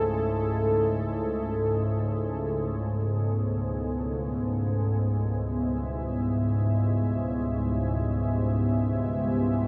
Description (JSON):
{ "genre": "dark ambient drone", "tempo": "free time", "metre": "none", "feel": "none", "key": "unclear", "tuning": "A4 = 441 Hz", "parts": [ { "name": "dark analog pad", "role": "sustained chords", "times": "0.0-9.7 s", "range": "B3 to E5", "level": "-31 LUFS", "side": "equal", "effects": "chorus" }, { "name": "organ-like drone", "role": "drone", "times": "0.0-9.7 s", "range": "C#2 to G#2", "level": "-29 LUFS", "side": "equal", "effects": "ensemble chorus, built-in reverb" }, { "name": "bronze singing bowl", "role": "texture", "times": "0.0-9.7 s", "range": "E4", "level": "-47 LUFS", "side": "equal", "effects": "none" } ], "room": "wet huge ambient reverb, RT60 7.8 s", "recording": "dreamy mix soaked in reverb", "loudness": "-27 LUFS", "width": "mono", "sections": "0.0-2.7 A section; 2.7-9.7 B section", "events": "none", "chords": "0.0 A; 2.7 Em", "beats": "free time" }